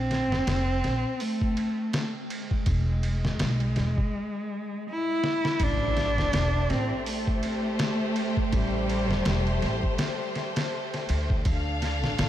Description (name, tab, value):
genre	trip hop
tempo	82 BPM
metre	4/4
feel	swing 58% on 16ths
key	A minor from 5.6 s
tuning	A4 = 440 Hz
part	dark cello	melody	0.0-10.0 s	G3 to E4	-29 LUFS	equal	vintage 12-bit sampler grit, tape echo
part	upright bass	bass	0.0-12.3 s	E1 to E2	-27 LUFS	equal	none
part	trip hop sampler-style drum kit	drums	0.1-12.3 s	hi-hat, kick drum, ride cymbal, snare drum	-30 LUFS	equal	none
part	warm studio violin section	sustained chords	5.6-12.3 s	A3 to F5	-32 LUFS	left 2 dB	none
part	impact	sound effects	5.6-8.5 s	none	-34 LUFS	equal	none
room	moderate plate reverb, RT60 3.5 s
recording	dreamy mix soaked in reverb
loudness	-24 LUFS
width	side -12 dB against mid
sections	0.0-5.6 A section; 5.6-12.3 B section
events	break 4.1-5.6; drum fill 5.2-5.6; impact 5.6-8.5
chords	0.0 Bb5; 2.7 E; 5.6 Am7; 11.5 Dm